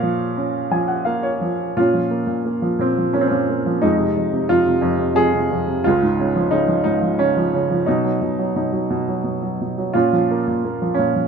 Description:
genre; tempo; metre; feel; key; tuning
classical, lyrical solo piano; 87 BPM; 3/4; rubato; Bb minor; A4 = 442 Hz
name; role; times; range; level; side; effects
clear upright piano; solo; 0.0-11.3 s; Db2 to Ab5; -17 LUFS; right 1 dB; none
room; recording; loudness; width
light reverb; close, detailed microphones; -17 LUFS; side -6 dB against mid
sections
0.0-1.8 A section; 1.8-11.3 B section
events
upright piano fill 0.4-1.8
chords
0.0 Bbm; 3.8 Fm7; 5.9 Db; 7.9 B; 9.9 Bbm

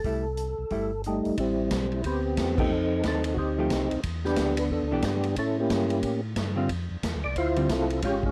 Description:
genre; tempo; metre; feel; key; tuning
soul jazz organ trio; 180 BPM; 4/4; swing 62% on 8ths; A minor; A4 = 440 Hz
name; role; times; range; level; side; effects
percussive tonewheel organ; melody; 0.0-8.3 s; G3 to D5; -29 LUFS; equal; slow rotary speaker, chorus vibrato
mellow tonewheel organ; bass; 0.0-8.3 s; F1 to A2; -34 LUFS; equal; overdrive, chorus vibrato, slow rotary speaker, transformer saturation
swinging big-band drum kit; drums; 0.0-8.3 s; crash cymbal, hi-hat, kick drum, ride cymbal, snare drum; -35 LUFS; equal; none
hollow-body jazz guitar; accompaniment; 0.1-8.2 s; D3 to G4; -32 LUFS; equal; none
room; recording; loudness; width
light reverb; worn, warbling old tape, cassette tape, warbly pitch drift; -27 LUFS; mono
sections
0.0-1.4 A section; 1.4-8.3 B section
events
band accent 2.5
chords
0.0 C6; 1.4 Am11; 2.7 F9; 4.0 Em7; 5.4 A7b9; 6.7 Dm9

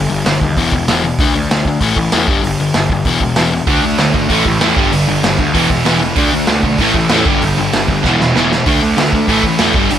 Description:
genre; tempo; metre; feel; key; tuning
punk rock; 193 BPM; 4/4; straight; unclear; A4 = 440 Hz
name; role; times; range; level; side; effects
crunchy overdriven guitar; riff; 0.0-10.0 s; E2 to D4; -15 LUFS; left 5 dB; none
fuzz picked electric bass; bass; 0.0-10.0 s; E1 to E2; -20 LUFS; right 1 dB; overdrive
raw garage drum kit; drums; 0.3-10.0 s; hi-hat, kick drum, snare drum; -16 LUFS; right 1 dB; none
crunchy overdriven guitar; riff; 3.7-10.0 s; E2 to D4; -19 LUFS; right 14 dB; none
high-gain distorted guitar; riff; 3.7-10.0 s; E2 to D4; -18 LUFS; right 2 dB; distortion
room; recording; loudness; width
light reverb; none; -11 LUFS; side -10 dB against mid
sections
0.0-10.0 A section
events
drum fill 8.0-8.7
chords
0.0 G5; 0.6 E5; 1.2 D5; 1.8 A5; 2.3 G5; 3.1 E5; 3.7 D5; 4.3 A5; 4.8 G5; 5.5 E5; 6.2 D5; 6.8 A5; 7.3 G5; 8.0 E5; 8.7 D5; 9.3 A5

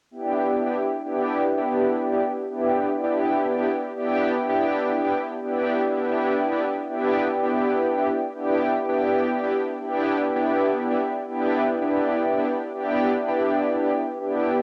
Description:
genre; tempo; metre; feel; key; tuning
drum and bass; 164 BPM; 4/4; straight; E minor; A4 = 440 Hz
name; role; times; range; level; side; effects
lush unison pad; sustained chords; 0.1-14.6 s; B3 to G4; -24 LUFS; equal; chorus
room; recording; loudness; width
moderate studio reverb, RT60 0.6 s; home recording on cassette; -24 LUFS; mono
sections
0.1-14.6 A section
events
none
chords
0.1 Em7

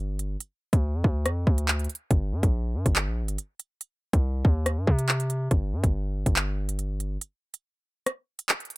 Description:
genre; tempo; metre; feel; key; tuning
hip hop, drill; 141 BPM; 4/4; half-time; unclear; A4 = 442 Hz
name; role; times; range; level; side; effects
distorted 808-style bass; bass; 0.0-7.2 s; G1 to C3; -26 LUFS; equal; distortion
drill drum kit; drums; 0.2-8.8 s; handclaps, hi-hat, kick drum, rim click; -24 LUFS; equal; none
room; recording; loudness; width
little or no reverb; none; -24 LUFS; side -20 dB against mid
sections
0.0-8.8 A section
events
break 7.2-8.8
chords
none

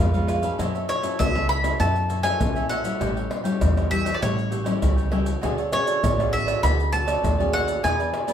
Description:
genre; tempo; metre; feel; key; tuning
samba and choro; 99 BPM; 4/4; straight; unclear; A4 = 435 Hz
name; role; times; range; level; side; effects
bowl-back mandolin; melody; 0.0-8.3 s; C#5 to B5; -26 LUFS; equal; none
cavaquinho; accompaniment; 0.0-8.3 s; E4 to G5; -29 LUFS; right 3 dB; none
nylon-string guitar; accompaniment; 0.0-8.3 s; G#2 to A4; -29 LUFS; left 3 dB; none
upright bass; bass; 0.0-8.1 s; A1 to F#2; -25 LUFS; equal; none
maracas, pandeiro, tamborim and surdo; percussion; 0.1-8.3 s; none; -27 LUFS; left 1 dB; none
room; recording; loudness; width
wet studio reverb, RT60 0.8 s; band playing live in one room; -20 LUFS; side -9 dB against mid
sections
0.0-8.3 A section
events
none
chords
0.0 C#7; 0.6 F#m7; 3.0 A7; 5.4 Dmaj7#11

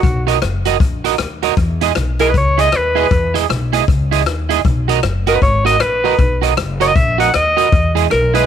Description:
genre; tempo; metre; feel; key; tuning
ska; 156 BPM; 4/4; swing 62% on 8ths; B major; A4 = 439 Hz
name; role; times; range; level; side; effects
clear alto saxophone; melody; 0.0-8.5 s; F#4 to F#5; -15 LUFS; left 1 dB; none
upright bass; bass; 0.0-8.5 s; F#1 to E2; -18 LUFS; left 1 dB; none
swinging big-band drum kit; drums; 0.0-8.4 s; hi-hat, kick drum, rim click; -18 LUFS; left 3 dB; none
electric guitar at the edge of break-up; accompaniment; 0.3-8.4 s; E4 to D#5; -18 LUFS; right 16 dB; analog chorus
room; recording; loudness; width
little or no reverb; 1960s-style stereo; -12 LUFS; side -9 dB against mid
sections
0.0-8.5 A section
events
alto saxophone solo 0.0-8.5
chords
0.0 Bmaj7; 1.6 Emaj7; 4.6 Bmaj7; 7.7 Emaj7

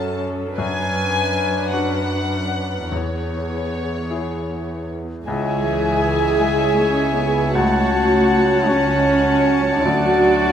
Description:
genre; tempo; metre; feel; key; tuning
cinematic, emotional film score for orchestra; 52 BPM (dotted quarters); 6/8; rubato; F# minor; A4 = 441 Hz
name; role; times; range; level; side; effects
rich studio violin section; melody; 0.0-10.5 s; C#5 to A5; -28 LUFS; left 4 dB; none
bright grand piano; accompaniment; 0.0-10.5 s; C#2 to C#5; -26 LUFS; left 3 dB; none
dark studio viola section; accompaniment; 0.0-10.5 s; B3 to B4; -21 LUFS; right 2 dB; none
dark studio cello section; bass; 0.0-10.5 s; E2 to C#4; -26 LUFS; right 1 dB; none
clear clarinet; second line; 5.3-10.5 s; C#5 to E5; -26 LUFS; left 1 dB; none
clear studio violin section; second line; 5.3-10.5 s; C#5 to F#5; -28 LUFS; left 2 dB; none
mellow hollow silver concert flute; second line; 5.3-10.5 s; C#5 to G#5; -25 LUFS; left 1 dB; none
warm oboe; second line; 5.3-10.5 s; G#5 to A5; -25 LUFS; equal; none
warm French horn section; sustained chords; 5.3-10.5 s; F#3 to E4; -25 LUFS; left 2 dB; none
dark studio double bass section; bass; 5.3-10.5 s; C#2 to D2; -26 LUFS; right 2 dB; none
room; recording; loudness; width
wet recital hall reverb, RT60 1.4 s; none; -17 LUFS; side -9 dB against mid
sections
0.0-5.3 A section; 5.3-10.5 A section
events
none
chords
0.0 F#m; 0.6 Bm/F#; 2.9 E6; 5.3 C#m; 7.5 F#m/C#; 9.9 D

